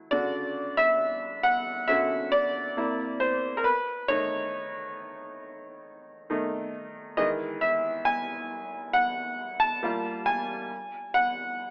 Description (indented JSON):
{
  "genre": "R&B",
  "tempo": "68 BPM",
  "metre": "4/4",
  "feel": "straight",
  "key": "unclear",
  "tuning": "A4 = 435 Hz",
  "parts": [
    { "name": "clear baby grand piano", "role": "solo", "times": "0.0-11.7 s", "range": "C3 to A5", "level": "-25 LUFS", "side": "equal", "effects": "none" }
  ],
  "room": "light reverb, small room ambience",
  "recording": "AM radio sound",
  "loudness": "-25 LUFS",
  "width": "side -34 dB against mid",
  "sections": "0.0-11.7 A section",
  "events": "grand piano solo 0.0-11.7",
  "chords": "0.1 Dmaj7; 2.8 C9; 3.6 B9/D#; 7.2 Emaj7; 9.8 Gm9; 10.7 N.C.",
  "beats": "| 0.12 1.00 1.88 2.77 | 3.65 4.53 5.41 6.29 | 7.18 8.06 8.94 9.82 | 10.71 11.59"
}